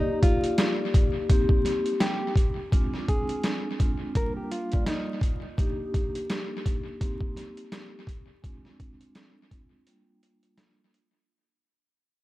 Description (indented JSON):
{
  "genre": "hip hop, boom-bap hip-hop",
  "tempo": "84 BPM",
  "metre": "4/4",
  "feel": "swing 58% on 16ths",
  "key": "unclear",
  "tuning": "A4 = 440 Hz",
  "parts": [
    { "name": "nylon-string guitar", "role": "melody", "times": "0.0-5.2 s", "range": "Eb4 to Bb4", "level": "-33 LUFS", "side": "equal", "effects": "high-pass filter, low-pass filter, tape echo" },
    { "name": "vibraphone with soft mallets", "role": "accompaniment", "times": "0.0-10.9 s", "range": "G3 to D5", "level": "-31 LUFS", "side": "left 1 dB", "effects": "cassette tape, high-pass filter, low-pass filter, tape echo" },
    { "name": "trip hop sampler-style drum kit", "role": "drums", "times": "0.2-11.1 s", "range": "hi-hat, kick drum, snare drum", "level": "-25 LUFS", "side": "equal", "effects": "none" }
  ],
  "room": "light reverb, small room ambience",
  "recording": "echo-heavy mix, vinyl crackle",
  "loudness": "-24 LUFS",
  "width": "side -17 dB against mid",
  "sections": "0.0-11.3 A section",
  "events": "fade-out 0.0-11.3; filter sweep 0.0-11.3; break 9.9-11.3",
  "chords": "0.0 Ebmaj9/Bb; 1.3 Eb6/Bb; 2.7 Dm7b5; 4.2 Gm7; 5.6 Ebmaj7/Bb; 7.0 Eb6/Bb; 8.4 Dm7b5; 9.9 Gm7",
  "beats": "0.58 1.29 2.01 | 2.72 3.44 4.15 4.87 | 5.58 6.29 7.01 7.72 | 8.44 9.15 9.87 10.58"
}